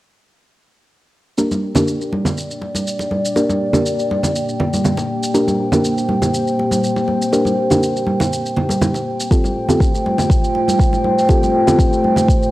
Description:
afro house; 121 BPM; 4/4; swing 53% on 16ths; G minor; A4 = 440 Hz
dark analog pad; sustained chords; 1.4-12.5 s; A3 to G5; -18 LUFS; equal; wide subtle chorus, sidechain pumping, cassette tape
deep mellow chord stab; stabs; 1.4-12.5 s; Bb3 to Bb4; -20 LUFS; equal; chorus, sidechain pumping, cassette tape, tape echo
shaker; drums; 1.4-12.5 s; -29 LUFS; equal; studio reverb, cassette tape
congas; percussion; 1.4-12.3 s; -20 LUFS; right 1 dB
electronic kick drum; drums; 9.3-12.4 s; -15 LUFS; equal; studio reverb, cassette tape
light reverb; home recording on cassette; -14 LUFS; side -16 dB against mid
1.4-12.5 A section
filter sweep on synth stab 1.4-12.5; filter sweep on analog synth pad 1.4-12.5
1.4 Gm; 9.3 Fadd9

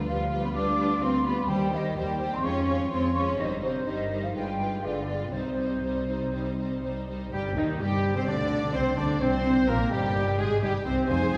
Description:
classical; 127 BPM; 4/4; rubato; C minor; A4 = 440 Hz
warm symphonic violin section; melody; 0.0-11.4 s; Eb4 to Ab5; -39 LUFS; equal
warm symphonic violin section; second line; 0.0-11.4 s; Eb4 to D5; -38 LUFS; equal
rich symphonic viola section; accompaniment; 0.0-11.4 s; Eb3 to Eb4; -37 LUFS; equal
concert harp; arpeggios; 0.0-11.4 s; F2 to G5; -39 LUFS; equal
dark symphonic double bass section; bass; 0.0-11.4 s; F1 to F2; -35 LUFS; equal
rich symphonic cello section; bass; 0.0-11.4 s; Eb2 to D4; -33 LUFS; equal
mellow flute section; second line; 0.1-11.4 s; Eb4 to D6; -35 LUFS; equal
clear oboe; second line; 7.3-11.4 s; Eb4 to D5; -38 LUFS; equal
warm clarinet; second line; 7.3-11.4 s; Eb3 to Eb4; -37 LUFS; equal
warm bassoon; accompaniment; 7.3-11.4 s; Eb3 to D4; -38 LUFS; equal
dark French horn section; sustained chords; 7.3-11.4 s; Eb3 to Eb4; -37 LUFS; equal
wet scoring stage reverb, RT60 1.7 s; heard from further back in the room; -27 LUFS; mono
0.0-7.3 A section; 7.3-11.4 B section
0.0 G7/D; 1.5 Cm/Eb; 2.4 Db/F; 3.4 Cm/G; 4.3 G7b9; 5.3 Cm; 7.3 Cm/G; 8.3 G/D; 9.2 Cm

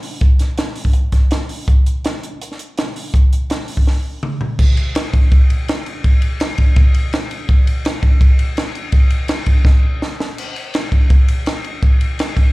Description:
rock; 166 BPM; 4/4; straight
compact cocktail drum kit; drums; 0.0-12.5 s; crash cymbal, hi-hat, kick drum, ride cymbal, snare drum, toms; -13 LUFS; equal
little or no reverb; live gig heard through the venue's PA, club reverb; -13 LUFS; side -21 dB against mid
0.0-4.6 A section; 4.6-12.5 B section
drum fill 3.9-4.6, 9.7-10.4

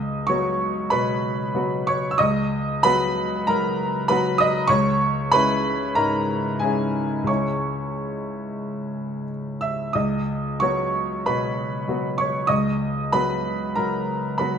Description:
neoclassical minimalist piano; 85-97 BPM; 4/4; rubato; A4 = 440 Hz
clear baby grand piano; solo; 0.0-14.6 s; C#2 to E6; -20 LUFS; equal
light reverb; minimal, uncompressed stereo recording; -20 LUFS; side -7 dB against mid
0.0-14.6 A section
0.0 B/C#; 4.7 C#m; 9.9 B/C#

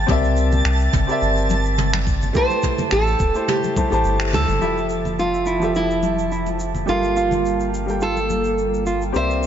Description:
sunset chillout; 106 BPM; 4/4; swing 54% on 16ths; G dorian; A4 = 440 Hz
warm concert grand piano; accompaniment; 0.0-9.5 s; F3 to A5; -24 LUFS; moving between left 6 dB and right 6 dB; auto-pan, tape echo
round analog bass; bass; 0.0-9.5 s; E1 to D2; -23 LUFS; equal
twinkling granular texture; texture; 0.0-4.6 s; A5 to A6; -28 LUFS; right 2 dB; built-in reverb
electronic kick drum; drums; 0.1-3.9 s; -22 LUFS; equal
jazz brush drum kit; drums; 0.1-9.5 s; finger snaps, shaker, toms; -28 LUFS; right 2 dB
congas; percussion; 0.5-8.4 s; -30 LUFS; left 2 dB
nylon-string guitar; melody; 2.4-9.5 s; E4 to C5; -22 LUFS; right 1 dB; tape echo
airy breathy pad; sustained chords; 4.6-9.5 s; C3 to A5; -28 LUFS; right 1 dB; chorus
mellow electric guitar; arpeggios; 4.6-9.0 s; E4 to F4; -29 LUFS; right 4 dB; low-pass filter, tape echo
light reverb, small room ambience; nothing above 7.6 kHz; -17 LUFS; side -9 dB against mid
0.0-4.6 A section; 4.6-9.5 B section
band accent 4.2
0.1 C9; 2.4 Am7; 4.6 Fmaj7; 6.9 Gm9

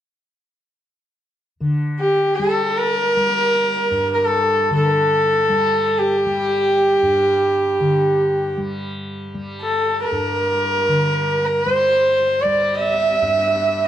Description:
indian classical; free time; G raga kafi; A4 = 441 Hz
tanpura; drone; 1.6-13.9 s; G2 to G3; -25 LUFS; left 1 dB
bright sarangi; melody; 2.0-13.9 s; G4 to E5; -17 LUFS; left 1 dB
trumpet with bucket mute; second line; 2.2-13.9 s; G4 to E5; -24 LUFS; right 6 dB
studio reverb; dry, close 1970s-style studio recording; -16 LUFS; side -11 dB against mid
1.6-13.9 A section

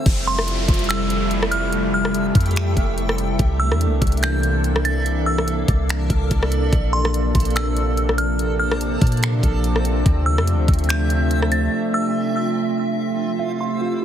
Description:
hip hop, atmospheric cloud-rap; 144 BPM; 4/4; half-time; F major; A4 = 445 Hz
warbly tape-like pad; sustained chords; 0.0-14.0 s; C3 to E5; -23 LUFS; right 1 dB; chorus, built-in reverb, sidechain pumping, low-pass filter
glassy wavetable pluck; arpeggios; 0.0-0.1, 13.4-14.0 s; F4 to E5; -28 LUFS; right 2 dB; chorus, low-pass filter, digital delay
backwards swelling texture; texture; 0.0-14.0 s; A3 to E5; -30 LUFS; right 1 dB; built-in reverb
soft 808-style bass; bass; 0.1-11.7 s; F1 to Bb2; -21 LUFS; equal
trap drum kit; drums; 0.1-11.6 s; crash cymbal, finger snaps, hi-hat, kick drum, rim click; -21 LUFS; equal
downlifter; sound effects; 0.1-3.4 s; -31 LUFS; equal
delicate synth tine bell; melody; 0.3-13.8 s; C6 to A6; -26 LUFS; right 1 dB; chorus, low-pass filter, digital delay
little or no reverb; heavily compressed radio sound, multiband compression; -17 LUFS; side -10 dB against mid
0.1-13.4 A section
break 11.7-13.4
0.1 Fmaj9; 3.4 C13; 6.7 Bbmaj9; 10.1 Dm9; 13.4 Fmaj9

